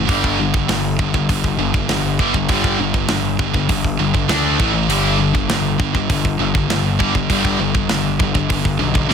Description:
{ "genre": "heavy metal", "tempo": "100 BPM", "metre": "4/4", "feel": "straight", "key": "unclear", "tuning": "A4 = 437 Hz", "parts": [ { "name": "heavy high-gain guitar", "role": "riff", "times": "0.0-9.1 s", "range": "G2 to D4", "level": "-20 LUFS", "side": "right 15 dB", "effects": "distortion" }, { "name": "sludgy distorted guitar", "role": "riff", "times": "0.0-9.1 s", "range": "G2 to D4", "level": "-21 LUFS", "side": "left 11 dB", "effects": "overdrive" }, { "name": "fuzz picked electric bass", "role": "bass", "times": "0.0-9.1 s", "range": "G1 to D2", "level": "-22 LUFS", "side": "right 1 dB", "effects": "overdrive" }, { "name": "tight metal drum kit", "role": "drums", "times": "0.1-9.1 s", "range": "hi-hat, kick drum, snare drum", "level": "-20 LUFS", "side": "equal", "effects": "soft clipping on kick, soft clipping on snare" } ], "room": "small room ambience", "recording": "dense, heavily limited modern master", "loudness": "-15 LUFS", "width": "side -7 dB against mid", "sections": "0.0-9.1 A section", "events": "none", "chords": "0.1 G5; 4.3 D5; 4.6 A5; 4.9 G5" }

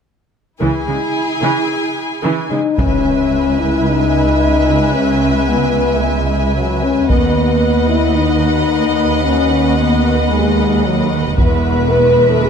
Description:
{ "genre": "cinematic, epic orchestral film score", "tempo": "112 BPM", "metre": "4/4", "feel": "straight", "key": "C# minor", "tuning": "A4 = 435 Hz", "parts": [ { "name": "rich studio violin section", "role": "second line", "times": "0.6-12.5 s", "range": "G#4 to G#5", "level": "-22 LUFS", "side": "left 4 dB", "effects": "none" }, { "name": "warm symphonic viola section", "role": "accompaniment", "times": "0.6-12.5 s", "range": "E3 to B4", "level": "-22 LUFS", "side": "right 2 dB", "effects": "none" }, { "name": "rich studio double bass section", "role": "bass", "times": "0.6-12.5 s", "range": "E1 to D#2", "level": "-19 LUFS", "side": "right 4 dB", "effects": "none" }, { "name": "rich symphonic cello section", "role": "bass", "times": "0.6-12.5 s", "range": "C#2 to C#3", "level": "-20 LUFS", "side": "right 5 dB", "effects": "none" }, { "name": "mellow French horn section", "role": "sustained chords", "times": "2.5-12.5 s", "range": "F#3 to B4", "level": "-15 LUFS", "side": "left 4 dB", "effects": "none" }, { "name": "warm studio violin section", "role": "melody", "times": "2.8-12.5 s", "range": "E5 to G#5", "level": "-27 LUFS", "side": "left 2 dB", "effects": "none" }, { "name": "solo taiko drums", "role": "drums", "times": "2.8-3.8, 7.1-12.4 s", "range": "none", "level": "-17 LUFS", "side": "equal", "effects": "none" }, { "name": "impact", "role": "sound effects", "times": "2.8-5.0 s", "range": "none", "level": "-26 LUFS", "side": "right 1 dB", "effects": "none" } ], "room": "moderate concert hall reverb, RT60 2.3 s", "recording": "none", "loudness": "-12 LUFS", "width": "side -6 dB against mid", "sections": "0.6-2.8 A section; 2.8-12.5 B section", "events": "impact 2.8-4.9", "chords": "0.6 C#m; 2.8 C#m7; 7.1 B/D#; 11.4 E5" }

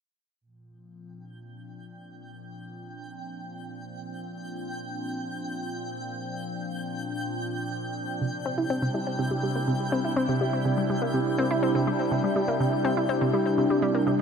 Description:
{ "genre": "ambient", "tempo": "123 BPM", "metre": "4/4", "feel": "straight", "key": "Bb lydian", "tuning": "A4 = 440 Hz", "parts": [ { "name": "phased analog pad", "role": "sustained chords", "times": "0.4-14.2 s", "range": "Bb2 to E4", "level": "-29 LUFS", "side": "equal", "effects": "phaser, chorus" }, { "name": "twinkling granular texture", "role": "texture", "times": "1.8-14.2 s", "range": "G5", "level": "-37 LUFS", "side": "right 1 dB", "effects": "built-in reverb" }, { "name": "analog pluck", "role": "riff", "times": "8.2-14.1 s", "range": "C3 to E4", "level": "-26 LUFS", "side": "equal", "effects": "chorus, tape echo" } ], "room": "wet huge ambient reverb, RT60 7.3 s", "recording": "cassette tape", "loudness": "-25 LUFS", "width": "side -6 dB against mid", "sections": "0.4-14.2 A section", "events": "fade-in on analog synth pad 0.4-14.2; fade-in on synth texture 0.4-14.2", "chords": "0.4 Bb; 8.2 C" }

